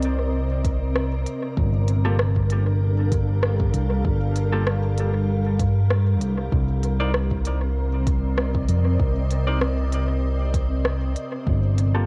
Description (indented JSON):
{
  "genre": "ambient dub",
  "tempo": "97 BPM",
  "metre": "4/4",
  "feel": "swing 55% on 16ths",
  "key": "unclear",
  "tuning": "A4 = 445 Hz",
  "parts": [
    { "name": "soft additive organ-like pad", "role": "sustained chords", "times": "0.0-12.1 s", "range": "C3 to F5", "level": "-30 LUFS", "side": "equal", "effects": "ensemble chorus, built-in reverb, cassette tape" },
    { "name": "fingered electric bass", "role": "bass", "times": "0.0-12.1 s", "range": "G1 to G2", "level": "-24 LUFS", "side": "equal", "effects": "none" },
    { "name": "organic electronic drum kit", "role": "drums", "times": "0.0-11.9 s", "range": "hi-hat, rim click", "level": "-31 LUFS", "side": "equal", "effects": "cassette tape, dub echo" },
    { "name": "electronic kick drum", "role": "drums", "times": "0.6-11.6 s", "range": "none", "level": "-27 LUFS", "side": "equal", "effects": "cassette tape" },
    { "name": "semi-hollow electric guitar", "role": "stabs", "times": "2.0-12.1 s", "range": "Bb3 to D5", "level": "-34 LUFS", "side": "equal", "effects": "cassette tape, dub echo" }
  ],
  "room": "light reverb, digital ambience",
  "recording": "home recording on cassette",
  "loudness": "-22 LUFS",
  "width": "mono",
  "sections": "0.0-12.1 A section",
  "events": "none",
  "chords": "0.0 Cm9; 1.6 Gm9; 6.5 Cm9; 11.5 Gm9"
}